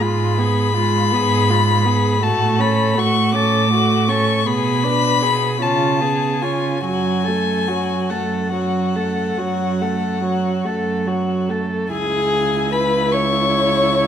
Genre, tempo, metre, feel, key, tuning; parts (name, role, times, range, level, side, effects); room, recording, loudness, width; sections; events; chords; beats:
classical, slow romantic movement for string quartet; 46-56 BPM (dotted quarters); 12/8; rubato; F# minor; A4 = 440 Hz
warm violin; melody; 0.0-14.1 s; F#5 to D6; -21 LUFS; left 8 dB
dark violin; second line; 0.0-14.1 s; E#4 to C#5; -22 LUFS; left 2 dB
warm viola; accompaniment; 0.0-14.1 s; F#3 to E4; -24 LUFS; right 3 dB
warm cello; bass; 0.0-14.1 s; C#2 to C#3; -21 LUFS; right 4 dB
moderate recital hall reverb, RT60 1.6 s; -16 LUFS; side -9 dB against mid
0.0-11.9 A section; 11.9-14.1 B section
0.0 Fdim/Ab; 2.2 F#m/A; 4.5 G#dim/B; 5.6 C#7; 6.8 F#m; 11.9 C#m
0.02 1.14 | 2.23 3.35 4.47 5.62 | 6.84 8.11 9.39 10.65 | 11.92 13.13